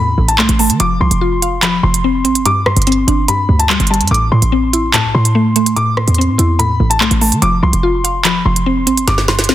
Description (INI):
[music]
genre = hip hop, drill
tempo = 145 BPM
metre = 4/4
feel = half-time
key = unclear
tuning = A4 = 441 Hz
[part]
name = clear upright piano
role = melody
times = 0.0-9.5 s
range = A5 to D6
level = -18 LUFS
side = left 2 dB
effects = ping-pong delay
[part]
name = mallet-like synth pluck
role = accompaniment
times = 0.0-9.5 s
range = G2 to F5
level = -16 LUFS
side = equal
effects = chorus
[part]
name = short 808-style bass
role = bass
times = 0.0-9.5 s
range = F1 to E3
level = -15 LUFS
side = equal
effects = none
[part]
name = drill drum kit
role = drums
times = 0.3-9.5 s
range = handclaps, hi-hat, rim click, snare drum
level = -15 LUFS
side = right 2 dB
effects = none
[sound]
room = light reverb, digital ambience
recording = dense, heavily limited modern master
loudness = -11 LUFS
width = side -13 dB against mid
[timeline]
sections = 0.0-9.5 A section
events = drum fill 9.1-9.5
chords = 0.0 Am; 0.8 F5; 2.5 Gsus4; 4.1 Am; 7.4 F5